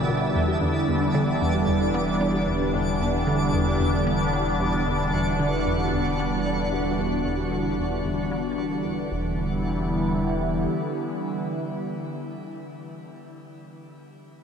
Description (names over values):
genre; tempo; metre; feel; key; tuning
ambient; 113 BPM; 4/4; straight; E minor; A4 = 436 Hz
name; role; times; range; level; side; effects
phased analog pad; sustained chords; 0.0-13.5 s; D3 to E4; -25 LUFS; equal; phaser, chorus, shimmer reverb
warbly dusty pluck; arpeggios; 0.0-9.4 s; D4 to E5; -39 LUFS; left 4 dB; none
round analog bass; bass; 0.0-10.7 s; E1; -33 LUFS; equal; none
twinkling granular texture; texture; 0.0-9.1 s; D4 to E5; -32 LUFS; right 1 dB; built-in reverb, shimmer reverb
resonant blip pluck; riff; 0.1-9.4 s; E2 to B3; -29 LUFS; equal; phaser, tape echo
room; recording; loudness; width
wet huge ambient reverb, RT60 7.4 s; none; -22 LUFS; side -7 dB against mid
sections
0.0-9.1 A section; 9.1-13.4 B section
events
fade-out on synth arpeggio sound 0.0-9.1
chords
0.0 Em7